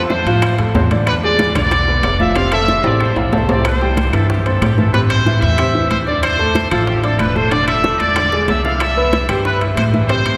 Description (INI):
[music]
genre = latin, salsa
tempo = 186 BPM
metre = 4/4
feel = straight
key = unclear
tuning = A4 = 440 Hz
[part]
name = bright upright piano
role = accompaniment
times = 0.0-10.4 s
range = C3 to E6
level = -22 LUFS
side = equal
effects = none
[part]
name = upright bass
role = bass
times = 0.0-10.4 s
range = E1 to A2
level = -20 LUFS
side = equal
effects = none
[part]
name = brilliant trumpet section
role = melody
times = 0.1-10.4 s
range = G4 to F5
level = -20 LUFS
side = equal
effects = none
[part]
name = bongos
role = percussion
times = 0.1-10.4 s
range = none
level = -29 LUFS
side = equal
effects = none
[part]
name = congas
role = percussion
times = 0.1-10.4 s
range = none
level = -27 LUFS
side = equal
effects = none
[part]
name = timbales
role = percussion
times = 0.1-10.4 s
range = none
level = -27 LUFS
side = equal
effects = none
[part]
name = claves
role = percussion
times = 0.4-10.4 s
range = none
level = -35 LUFS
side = equal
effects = none
[sound]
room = wet cathedral reverb, RT60 6.3 s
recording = recorded in a church or concert hall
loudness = -15 LUFS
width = mono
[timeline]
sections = 0.0-3.6 A section; 3.6-10.4 B section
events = drum fill 2.8-3.6, 8.3-8.8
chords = 0.0 Fmaj7; 1.1 E7; 2.4 F; 3.6 C; 4.9 Am; 6.2 Dm; 7.5 E7sus4; 8.2 E7; 8.8 Cmaj7